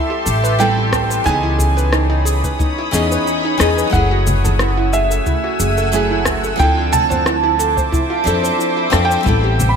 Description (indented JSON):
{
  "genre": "sunset chillout",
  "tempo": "90 BPM",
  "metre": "4/4",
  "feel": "swing 54% on 16ths",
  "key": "F# minor",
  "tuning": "A4 = 440 Hz",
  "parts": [
    { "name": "dark baby grand piano", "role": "melody", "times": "0.0-9.8 s", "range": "E5 to B5", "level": "-20 LUFS", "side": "right 3 dB", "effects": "digital delay" },
    { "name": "flamenco guitar", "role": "accompaniment", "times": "0.0-9.8 s", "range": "E3 to A4", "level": "-21 LUFS", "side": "moving between left 5 dB and right 7 dB", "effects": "auto-pan, digital delay" },
    { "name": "shimmering ambient pad", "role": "sustained chords", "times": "0.0-9.8 s", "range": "A3 to E6", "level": "-22 LUFS", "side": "left 1 dB", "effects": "chorus, built-in reverb" },
    { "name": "soft round pluck", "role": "arpeggios", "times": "0.0-9.8 s", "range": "D#4 to C5", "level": "-24 LUFS", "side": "right 3 dB", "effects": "lush chorus, cassette tape, digital delay" },
    { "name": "upright bass", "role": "bass", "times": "0.3-9.8 s", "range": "F#1 to F2", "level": "-18 LUFS", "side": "equal", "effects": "none" },
    { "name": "electronic cabasa and rim click", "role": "drums", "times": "0.3-9.7 s", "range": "none", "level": "-23 LUFS", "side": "left 1 dB", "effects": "none" },
    { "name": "electronic kick drum", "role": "drums", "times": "0.9-9.4 s", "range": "none", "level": "-21 LUFS", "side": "equal", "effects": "none" },
    { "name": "congas", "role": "percussion", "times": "4.3-9.7 s", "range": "none", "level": "-23 LUFS", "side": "left 2 dB", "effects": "none" }
  ],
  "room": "moderate lush hall reverb, RT60 1.9 s, small room ambience",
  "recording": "bright 1980s-style digital production",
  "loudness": "-13 LUFS",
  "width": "side -6 dB against mid",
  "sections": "0.0-9.8 A section",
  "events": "none",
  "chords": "0.0 Am9; 1.3 C#m9; 3.9 F#m9; 6.6 Dm9; 9.3 Am9",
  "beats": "0.60 | 1.26 1.93 2.60 3.26 | 3.93 4.60 5.26 5.93 | 6.60 7.26 7.93 8.60 | 9.26"
}